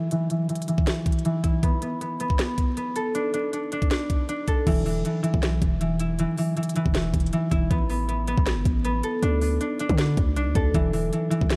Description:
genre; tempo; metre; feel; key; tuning
hip hop, trap; 158 BPM; 4/4; half-time; unclear; A4 = 439 Hz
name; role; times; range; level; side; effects
concert harp; arpeggios; 0.0-11.6 s; E3 to A4; -28 LUFS; equal; low-pass filter, digital delay
trap drum kit; drums; 0.1-11.6 s; crash cymbal, hi-hat, kick drum, snare drum; -28 LUFS; equal; none
hard-hitting 808-style bass; bass; 4.7-11.6 s; E1 to D3; -28 LUFS; equal; none
room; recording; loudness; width
little or no reverb; dark, warm production, vinyl crackle; -24 LUFS; mono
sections
0.0-4.7 A section; 4.7-11.6 B section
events
filter sweep on harp 0.0-4.7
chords
0.0 N.C.; 1.6 Asus2; 3.1 D5; 4.7 E5; 7.7 Asus2; 9.2 D5; 10.7 E5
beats
| 0.11 0.49 0.87 1.25 | 1.63 2.01 2.39 2.77 | 3.15 3.53 3.91 4.29 | 4.67 5.05 5.43 5.81 | 6.19 6.57 6.95 7.33 | 7.71 8.09 8.46 8.85 | 9.22 9.61 9.98 10.36 | 10.74 11.12 11.50

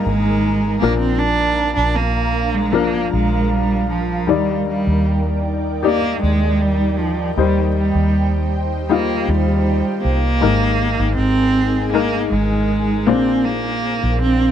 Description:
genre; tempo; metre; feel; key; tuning
pop; 78 BPM; 4/4; straight; Eb major; A4 = 441 Hz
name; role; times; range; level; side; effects
rich cello; melody; 0.0-14.5 s; F3 to D4; -19 LUFS; right 3 dB; none
warm grand piano; accompaniment; 0.0-14.5 s; Ab2 to D5; -22 LUFS; left 10 dB; none
ethereal airy pad; sustained chords; 0.0-14.5 s; D4 to Bb5; -25 LUFS; equal; ensemble chorus, built-in reverb
vintage muted fingered electric bass; bass; 0.0-14.5 s; Ab1 to Eb2; -20 LUFS; equal; none
room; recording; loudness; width
little or no reverb; dry, close 1970s-style studio recording; -15 LUFS; side -9 dB against mid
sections
0.0-14.5 A section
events
none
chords
0.0 Absus2; 0.8 Bb; 4.3 Ebmaj7; 7.4 Cm/Eb; 10.4 Absus2; 13.1 Bbadd9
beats
0.44 | 1.20 1.97 2.74 3.52 | 4.29 5.07 5.84 6.61 | 7.38 8.14 8.90 9.66 | 10.42 11.18 11.94 12.70 | 13.46 14.22

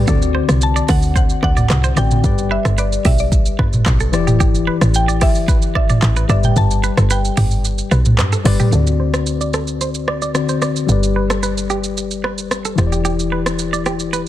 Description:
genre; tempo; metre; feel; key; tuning
afrobeats; 111 BPM; 4/4; straight; G major; A4 = 441 Hz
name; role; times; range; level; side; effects
tine electric piano; accompaniment; 0.0-14.3 s; D3 to D5; -21 LUFS; left 7 dB; low-pass filter
clean electric guitar; riff; 0.0-14.2 s; G4 to D5; -25 LUFS; right 6 dB; low-pass filter, ping-pong delay
woody log drum bass; bass; 0.0-14.3 s; E1 to G2; -18 LUFS; equal; none
afro-pop drum kit; drums; 0.1-14.3 s; handclaps, hi-hat, kick drum, rim click, shaker, toms; -18 LUFS; right 1 dB; soft clipping on snare
mallet-like synth pluck; melody; 0.6-8.2 s; D5 to A5; -23 LUFS; equal; chorus, ping-pong delay
room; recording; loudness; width
little or no reverb; dense, heavily limited modern master; -14 LUFS; side -13 dB against mid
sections
0.0-8.7 A section; 8.7-14.3 B section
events
kick muted 6.6-8.7; filter sweep 8.7-14.3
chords
0.1 D7; 2.2 G; 4.1 Em7; 6.3 G; 8.7 D7; 10.9 G; 12.8 Em7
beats
| 0.08 0.62 1.16 1.70 | 2.24 2.78 3.32 3.86 | 4.40 4.94 5.48 6.02 | 6.57 7.11 7.65 8.19 | 8.73 9.27 9.81 10.35 | 10.89 11.43 11.97 12.51 | 13.05 13.59 14.13

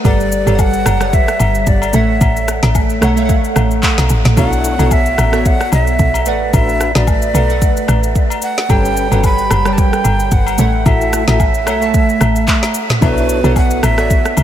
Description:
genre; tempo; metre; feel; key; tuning
amapiano; 111 BPM; 4/4; swing 55% on 16ths; B minor; A4 = 440 Hz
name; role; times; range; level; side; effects
glassy digital keys; accompaniment; 0.0-14.4 s; G3 to A5; -18 LUFS; right 3 dB; chorus
woody log drum bass; bass; 0.0-14.4 s; F#1 to B1; -15 LUFS; equal; none
afro-pop drum kit; drums; 0.0-14.4 s; handclaps, kick drum, rim click, shaker, snare drum, toms; -16 LUFS; equal; none
breathy mellow tenor recorder; melody; 0.1-14.4 s; B4 to B5; -18 LUFS; right 1 dB; ping-pong delay
agogo bells and woodblock; percussion; 0.1-14.4 s; none; -26 LUFS; left 8 dB; none
mellow tonewheel organ; stabs; 4.4-13.6 s; C#4 to C#5; -25 LUFS; left 4 dB; overdrive, fast rotary speaker, ping-pong delay
room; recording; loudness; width
light reverb; none; -11 LUFS; side -11 dB against mid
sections
0.0-14.4 A section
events
none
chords
0.0 Gmaj9#11; 1.9 F#m7/A; 4.4 Bm11; 6.3 D6/A; 8.7 Gmaj9#11; 10.6 F#m7/A; 13.0 Bm11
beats
| 0.05 0.59 1.13 1.67 | 2.21 2.75 3.29 3.83 | 4.37 4.91 5.45 5.99 | 6.54 7.08 7.62 8.16 | 8.70 9.24 9.78 10.32 | 10.86 11.40 11.94 12.48 | 13.02 13.56 14.10

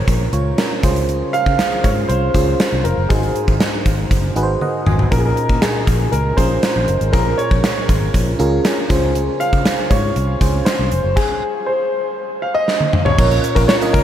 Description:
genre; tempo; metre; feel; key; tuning
1980s-style pop; 119 BPM; 4/4; straight; Bb minor; A4 = 440 Hz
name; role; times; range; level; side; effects
clear concert grand piano; melody; 0.0-14.0 s; Ab4 to F5; -21 LUFS; equal; wide subtle chorus, diffuse ambient delay, shimmer reverb
FM electric piano; accompaniment; 0.0-14.0 s; Ab2 to Ab5; -21 LUFS; right 2 dB; chorus, phaser, shimmer reverb
vintage muted fingered electric bass; bass; 0.1-14.0 s; F1 to Db3; -19 LUFS; equal; none
gated 80s drum kit; drums; 0.1-14.0 s; crash cymbal, hi-hat, kick drum, snare drum, tambourine, toms; -18 LUFS; equal; none
room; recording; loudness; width
moderate huge ambient reverb, RT60 7.4 s; dreamy mix soaked in reverb; -14 LUFS; side -10 dB against mid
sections
0.0-13.2 A section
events
FM electric piano fill 4.4-5.1, 8.1-9.2; drum fill 4.6-5.1, 12.7-13.2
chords
0.0 Bbm7; 0.8 Dbmaj7; 3.1 Ab7; 5.1 Bbm7; 8.9 Dbmaj7; 11.2 N.C.; 13.2 Bbm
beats
0.08 0.58 | 1.08 1.59 2.09 2.60 | 3.10 3.61 4.11 4.61 | 5.12 5.62 6.13 6.63 | 7.13 7.64 8.14 8.65 | 9.15 9.66 10.16 10.66 | 11.17 11.67 12.18 12.68 | 13.19 13.69

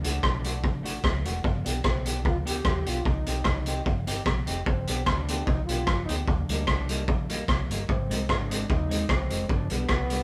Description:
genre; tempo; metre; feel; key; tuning
ska; 149 BPM; 4/4; swing 53% on 8ths; unclear; A4 = 440 Hz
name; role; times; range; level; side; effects
growling trombone; melody; 0.0-10.2 s; B3 to G4; -38 LUFS; equal; none
clean electric guitar; accompaniment; 0.0-10.2 s; G3 to G4; -38 LUFS; equal; none
raw garage drum kit; drums; 0.0-10.2 s; hi-hat, kick drum, rim click; -29 LUFS; equal; none
vintage muted fingered electric bass; bass; 0.1-10.2 s; E1 to Eb2; -33 LUFS; equal; none
room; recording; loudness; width
moderate studio reverb, RT60 0.9 s; band playing live in one room; -27 LUFS; mono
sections
0.0-10.2 A section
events
none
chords
0.0 D; 1.4 G; 3.1 Cm; 4.7 G; 6.3 Eb; 7.9 Ab; 9.5 G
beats
0.23 0.64 1.04 | 1.44 1.84 2.25 2.65 | 3.05 3.46 3.86 4.26 | 4.66 5.07 5.47 5.87 | 6.27 6.68 7.08 7.48 | 7.88 8.29 8.69 9.09 | 9.50 9.90

